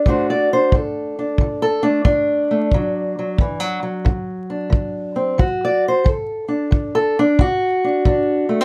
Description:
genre	acoustic country blues, solo or duo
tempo	90 BPM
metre	4/4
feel	swing 66% on 8ths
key	D mixolydian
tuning	A4 = 440 Hz
part	fingerpicked steel-string acoustic guitar	melody	0.0-8.6 s	D3 to D5	-20 LUFS	equal	none
part	kick drum	drums	0.1-8.3 s	none	-20 LUFS	equal	none
room	light reverb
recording	close, detailed microphones, vinyl crackle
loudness	-19 LUFS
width	mono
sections	0.1-8.6 A section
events	steel-string acoustic guitar solo 0.1-8.6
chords	0.1 D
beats	| 0.06 0.73 1.39 2.06 | 2.72 3.39 4.06 4.72 | 5.39 6.06 6.72 7.39 | 8.06

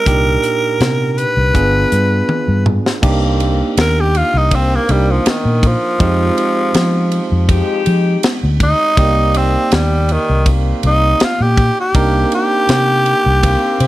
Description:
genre	straight-eighth soul blues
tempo	81 BPM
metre	4/4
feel	straight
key	C minor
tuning	A4 = 440 Hz
part	growling tenor saxophone	melody	0.0-13.9 s	Eb3 to B4	-16 LUFS	equal	none
part	bell-like tine electric piano	accompaniment	0.0-13.9 s	Bb2 to D5	-21 LUFS	right 4 dB	none
part	vintage muted fingered electric bass	bass	0.1-13.9 s	G1 to F3	-15 LUFS	equal	none
part	tight funk drum kit	drums	0.1-13.9 s	crash cymbal, hi-hat, kick drum, ride cymbal, snare drum, toms	-19 LUFS	equal	none
part	mellow horn section	sustained chords	3.0-13.9 s	Ab3 to G4	-24 LUFS	left 2 dB	none
room	studio reverb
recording	none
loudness	-12 LUFS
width	side -16 dB against mid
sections	0.0-3.0 A section; 3.0-13.9 B section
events	drum fill 2.3-3.0; tenor saxophone solo 3.0-13.9; tine electric piano fill 13.4-13.9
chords	0.1 Cm7; 1.5 G7b9; 3.0 Cm7; 6.0 Fm7; 9.0 Cm7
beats	| 0.06 0.80 1.55 2.29 | 3.03 3.77 4.52 5.26 | 6.00 6.75 7.49 8.23 | 8.97 9.72 10.46 11.20 | 11.95 12.69 13.43

